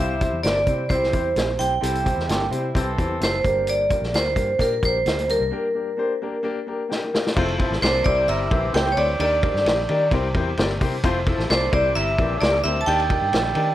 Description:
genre	uptempo 1960s-style soul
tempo	130 BPM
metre	4/4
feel	straight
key	unclear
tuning	A4 = 439 Hz
part	vibraphone with hard mallets	melody	0.0-13.7 s	Bb4 to A5	-22 LUFS	right 1 dB	slapback echo
part	warm horn section	second line	0.0-3.4, 7.4-12.6 s	E3 to D5	-30 LUFS	right 1 dB	none
part	warm concert grand piano	accompaniment	0.0-13.7 s	G2 to G5	-27 LUFS	left 3 dB	none
part	vintage muted fingered electric bass	bass	0.0-13.7 s	F1 to Eb3	-27 LUFS	equal	none
part	vintage drum kit	drums	0.2-13.7 s	crash cymbal, hi-hat, kick drum, ride cymbal, snare drum	-24 LUFS	equal	none
part	glockenspiel with hard plastic mallets	second line	7.8-13.7 s	C6 to A6	-33 LUFS	right 1 dB	slapback echo
room	light reverb, small room reverb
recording	none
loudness	-19 LUFS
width	side -13 dB against mid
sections	0.0-7.4 A section; 7.4-13.7 B section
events	break 5.5-7.4; grand piano fill 6.7-7.4; drum fill 6.9-7.4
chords	0.0 C; 3.4 Gm; 7.4 Fmaj7; 8.1 C7; 9.2 Ebmaj7; 10.1 C7; 11.0 Fmaj7; 11.7 C7; 12.9 Ebmaj7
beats	0.45 0.91 1.37 | 1.83 2.29 2.75 3.21 | 3.68 4.14 4.60 5.06 | 5.52 5.98 6.44 6.90 | 7.36 7.82 8.28 8.74 | 9.20 9.66 10.12 10.58 | 11.04 11.49 11.95 12.41 | 12.87 13.33

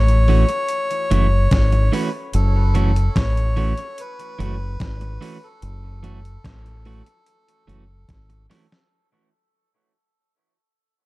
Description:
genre	dub reggae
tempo	73 BPM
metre	4/4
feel	straight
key	F# minor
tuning	A4 = 439 Hz
part	melodica	melody	0.0-8.5 s	A4 to C#5	-26 LUFS	left 2 dB	dub echo
part	deep dub fingered electric bass	bass	0.0-8.5 s	F#1 to A1	-18 LUFS	equal	none
part	dusty soul sampler-style drum kit	drums	0.1-8.9 s	hi-hat, kick drum, snare drum	-22 LUFS	equal	none
part	electric guitar at the edge of break-up	accompaniment	0.3-8.7 s	E3 to F#4	-26 LUFS	right 5 dB	dub echo
room	digital ambience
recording	dark, warm production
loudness	-16 LUFS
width	side -20 dB against mid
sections	0.0-8.9 A section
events	fade-out 0.0-8.9; drum fill 8.1-8.9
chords	0.0 F#m7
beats	0.69 1.52 | 2.34 3.16 3.98 4.80 | 5.62 6.44 7.26 8.09

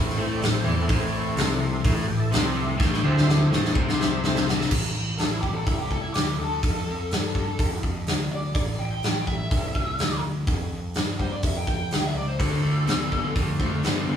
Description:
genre	blues rock power trio and southern rock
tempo	125 BPM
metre	4/4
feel	straight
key	A minor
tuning	A4 = 440 Hz
part	overdriven tonewheel organ	sustained chords	0.0-4.7, 12.4-14.1 s	E3 to G5	-31 LUFS	right 2 dB	slow rotary speaker, chorus vibrato
part	crunchy overdriven guitar	riff	0.0-4.7, 12.4-14.2 s	A2 to B3	-25 LUFS	left 1 dB	none
part	fuzz picked electric bass	bass	0.0-14.2 s	A1 to A2	-29 LUFS	equal	overdrive
part	big rock drum kit	drums	0.1-14.0 s	crash cymbal, hi-hat, kick drum, snare drum	-25 LUFS	equal	none
part	fuzz lead guitar	melody	5.2-13.3 s	E4 to G5	-31 LUFS	equal	wah, distortion
room	moderate large studio reverb, RT60 1.1 s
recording	band playing live in one room, small room ambience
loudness	-22 LUFS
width	side -9 dB against mid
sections	0.0-4.7 A section; 4.7-14.2 B section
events	tonewheel organ solo 0.0-4.7; drum fill 2.8-4.7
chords	0.0 Am; 4.7 Am7; 12.4 Dm7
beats	0.42 | 0.90 1.37 1.85 2.32 | 2.80 3.28 3.75 4.23 | 4.71 5.18 5.66 6.14 | 6.62 7.10 7.58 8.06 | 8.55 9.03 9.51 9.99 | 10.47 10.95 11.43 11.91 | 12.39 12.87 13.35 13.83

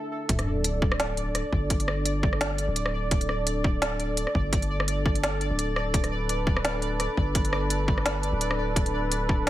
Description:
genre	half-time drum and bass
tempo	170 BPM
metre	4/4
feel	swing 55% on 16ths, half-time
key	unclear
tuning	A4 = 439 Hz
part	dark analog pad	sustained chords	0.0-9.5 s	D4 to E5	-31 LUFS	right 1 dB	chorus, sidechain pumping
part	pulsing gated texture	texture	0.0-9.5 s	A4 to D5	-35 LUFS	equal	chorus, built-in reverb
part	long sustained 808-style bass	bass	0.3-9.5 s	D1 to G1	-29 LUFS	equal	none
part	electronic kick drum	drums	0.3-9.4 s	none	-26 LUFS	equal	overdrive
part	organic electronic drum kit	drums	0.3-9.5 s	hi-hat, rim click, snare drum	-29 LUFS	equal	none
part	sub drop	sound effects	0.3-1.7 s	none	-34 LUFS	equal	none
room	light reverb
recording	none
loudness	-24 LUFS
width	side -14 dB against mid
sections	0.3-9.5 A section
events	drop 0.3-9.5; impact 0.3-1.7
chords	0.3 D5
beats	| 0.29 0.64 1.00 1.35 | 1.70 2.06 2.41 2.76 | 3.12 3.47 3.82 4.17 | 4.53 4.88 5.23 5.58 | 5.94 6.29 6.64 7.00 | 7.35 7.70 8.06 8.41 | 8.76 9.12 9.47

